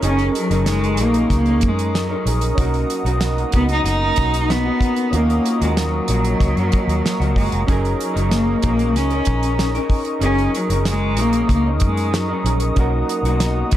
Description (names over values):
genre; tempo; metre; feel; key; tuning
indie pop, bedroom pop; 94 BPM; 4/4; straight; F# major; A4 = 440 Hz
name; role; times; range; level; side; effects
electric guitar through a small old amp; accompaniment; 0.0-13.8 s; B2 to A#4; -26 LUFS; left 4 dB; lush chorus, warbly pitch drift
warm analog keys; accompaniment; 0.0-13.8 s; C#4 to A#4; -27 LUFS; right 5 dB; chorus
hollow soft pad; sustained chords; 0.0-13.8 s; D#5 to D#6; -28 LUFS; right 2 dB; chorus
vintage muted fingered electric bass; bass; 0.0-13.8 s; E#1 to F#2; -20 LUFS; equal; none
damped 70s drum kit; drums; 0.0-13.8 s; hi-hat, kick drum, snare drum; -22 LUFS; equal; none
warm cello; melody; 0.1-13.8 s; F#3 to D#4; -21 LUFS; equal; wide subtle chorus, tape echo
room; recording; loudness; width
light reverb, small room ambience; none; -16 LUFS; side -12 dB against mid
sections
0.0-13.8 A section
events
none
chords
0.0 F#6; 2.6 Bmaj7; 5.1 D#m7; 7.7 F#6; 12.8 Bmaj7